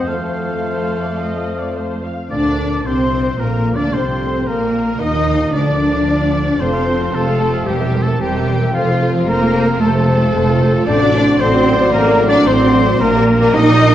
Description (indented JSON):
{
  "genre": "classical",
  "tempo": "112 BPM",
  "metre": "4/4",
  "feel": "straight",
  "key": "unclear",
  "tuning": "A4 = 437 Hz",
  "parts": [
    { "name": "rich studio violin section", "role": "melody", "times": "0.0-13.9 s", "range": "F4 to F5", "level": "-27 LUFS", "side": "left 4 dB", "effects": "none" },
    { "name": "bright silver concert flute", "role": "second line", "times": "0.0-13.9 s", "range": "F5 to Eb6", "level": "-24 LUFS", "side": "left 2 dB", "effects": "none" },
    { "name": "warm clarinet", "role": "second line", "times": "0.0-2.0 s", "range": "C5", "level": "-29 LUFS", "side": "left 2 dB", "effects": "none" },
    { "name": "warm oboe", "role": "second line", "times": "0.0-13.9 s", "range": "F4 to F5", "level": "-25 LUFS", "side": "right 1 dB", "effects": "none" },
    { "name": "warm symphonic violin section", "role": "second line", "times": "0.0-13.9 s", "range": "F4 to Eb5", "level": "-24 LUFS", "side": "left 3 dB", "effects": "none" },
    { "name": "dark symphonic viola section", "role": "accompaniment", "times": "0.0-13.9 s", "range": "Bb3 to F5", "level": "-24 LUFS", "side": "right 1 dB", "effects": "none" },
    { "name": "mellow French horn section", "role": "sustained chords", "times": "0.0-13.9 s", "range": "A3 to D5", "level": "-22 LUFS", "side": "left 2 dB", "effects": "none" },
    { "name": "concert harp", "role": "arpeggios", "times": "0.0-13.9 s", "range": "E2 to C5", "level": "-25 LUFS", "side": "left 6 dB", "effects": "none" },
    { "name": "rich symphonic double bass section", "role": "bass", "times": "0.0-13.9 s", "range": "E1 to F2", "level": "-20 LUFS", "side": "right 2 dB", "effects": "none" },
    { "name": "warm symphonic cello section", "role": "bass", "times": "0.0-13.9 s", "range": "F3 to Eb4", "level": "-18 LUFS", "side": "right 1 dB", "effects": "none" },
    { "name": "warm trombone section", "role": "sustained chords", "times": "2.3-13.9 s", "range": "A2 to C4", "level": "-26 LUFS", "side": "right 3 dB", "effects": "none" }
  ],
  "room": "wet concert hall reverb, RT60 1.8 s",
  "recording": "worn, warbling old tape, cassette tape, warbly pitch drift",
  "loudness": "-13 LUFS",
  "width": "side -12 dB against mid",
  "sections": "0.0-2.3 A section; 2.3-13.9 B section",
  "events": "none",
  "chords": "0.1 F; 2.3 Bb/D; 3.4 F7; 4.5 Bb; 6.6 F; 7.7 C7/E; 8.7 F; 10.9 D7/A; 13.0 Gm/Bb"
}